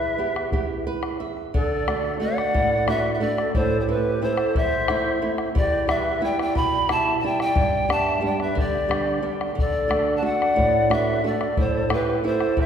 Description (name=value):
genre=andean folk, Andean ensemble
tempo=60 BPM (dotted quarters)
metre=6/8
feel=straight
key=unclear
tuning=A4 = 440 Hz
part: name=polished pan flute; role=melody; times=0.0-12.7 s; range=B4 to B5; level=-24 LUFS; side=equal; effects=none
part: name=large quena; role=second line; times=0.0-12.7 s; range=G4 to G5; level=-27 LUFS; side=left 1 dB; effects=none
part: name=flamenco guitar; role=accompaniment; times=0.0-12.7 s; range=E2 to E5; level=-26 LUFS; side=right 2 dB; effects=none
part: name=bombo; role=percussion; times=0.4-12.7 s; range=none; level=-27 LUFS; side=left 2 dB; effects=none
room=wet concert hall reverb, RT60 1.9 s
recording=recorded in a church or concert hall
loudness=-20 LUFS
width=side -8 dB against mid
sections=0.0-1.5 A section; 1.5-12.7 B section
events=nylon-string guitar fill 0.5-1.5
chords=0.0 Em; 1.5 D; 3.5 Am; 5.5 Em; 7.6 G; 9.6 D; 11.6 Am